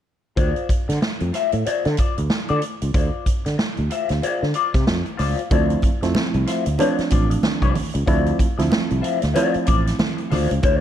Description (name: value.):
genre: funk.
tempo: 94 BPM.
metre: 4/4.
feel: swing 60% on 16ths.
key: D minor.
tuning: A4 = 441 Hz.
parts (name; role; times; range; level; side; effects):
semi-hollow electric guitar; accompaniment; 0.4-10.8 s; F4 to E5; -24 LUFS; left 6 dB; wah, lush chorus.
sustaining fretless electric bass; bass; 0.4-10.8 s; A1 to D3; -22 LUFS; equal; lush chorus.
swinging big-band drum kit; drums; 0.4-10.8 s; hi-hat, kick drum, snare drum; -22 LUFS; equal; none.
barky reed electric piano; stabs; 5.5-10.3 s; F3 to E4; -23 LUFS; right 4 dB; overdrive.
congas; percussion; 5.5-10.8 s; none; -30 LUFS; right 4 dB; none.
room: light reverb, studio ambience.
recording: dark, warm production.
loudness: -18 LUFS.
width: side -10 dB against mid.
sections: 0.4-5.5 A section; 5.5-10.8 B section.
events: none.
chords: 0.4 Dm7.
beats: | 0.37 1.02 1.66 2.30 | 2.95 3.59 4.23 4.87 | 5.51 6.16 6.79 7.44 | 8.07 8.71 9.36 9.99 | 10.63.